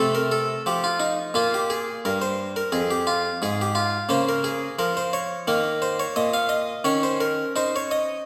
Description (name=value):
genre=classical, baroque-style suite movement for harpsichord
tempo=87 BPM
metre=4/4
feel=rubato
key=unclear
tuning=A4 = 438 Hz
part: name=harpsichord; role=solo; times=0.0-8.2 s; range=F2 to F5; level=-24 LUFS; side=equal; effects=none
room=wet scoring stage reverb, RT60 1.5 s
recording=recorded in a church or concert hall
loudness=-24 LUFS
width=mono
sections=0.0-8.3 A section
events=none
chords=0.0 F/C; 1.3 Bb5; 4.1 Bbm/Db; 5.5 Eb5; 6.9 Bbmadd11/Eb